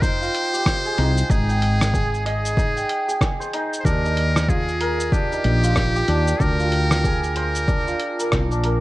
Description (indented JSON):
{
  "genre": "organic downtempo",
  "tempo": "94 BPM",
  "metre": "4/4",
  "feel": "swing 60% on 16ths",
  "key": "unclear",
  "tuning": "A4 = 440 Hz",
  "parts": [
    { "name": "trumpet with metal mute", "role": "melody", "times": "0.0-8.6 s", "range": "G4 to C5", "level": "-25 LUFS", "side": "equal", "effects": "tape echo" },
    { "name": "santur", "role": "arpeggios", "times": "0.0-8.8 s", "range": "D4 to G5", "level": "-25 LUFS", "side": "right 1 dB", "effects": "tape echo" },
    { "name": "woody fretless electric bass", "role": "bass", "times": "0.0-8.8 s", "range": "F1 to Eb2", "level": "-22 LUFS", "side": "equal", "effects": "wide subtle chorus, sidechain pumping" },
    { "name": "dusty soul sampler-style drum kit", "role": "drums", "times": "0.0-8.8 s", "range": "hi-hat, rim click, shaker", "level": "-26 LUFS", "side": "equal", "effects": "overdrive" },
    { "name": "electronic kick drum", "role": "drums", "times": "0.0-8.5 s", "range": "none", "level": "-22 LUFS", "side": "equal", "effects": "none" }
  ],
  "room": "little or no reverb",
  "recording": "worn, warbling old tape, cassette tape, warbly pitch drift",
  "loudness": "-18 LUFS",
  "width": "side -18 dB against mid",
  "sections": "0.0-8.8 A section",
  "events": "none",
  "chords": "0.0 Fm9; 1.3 Abmaj7; 3.9 Ebmaj9; 6.4 Bb9/D",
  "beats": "0.02 0.66 | 1.30 1.94 2.58 3.21 | 3.85 4.49 5.13 5.77 | 6.41 7.04 7.68 8.32"
}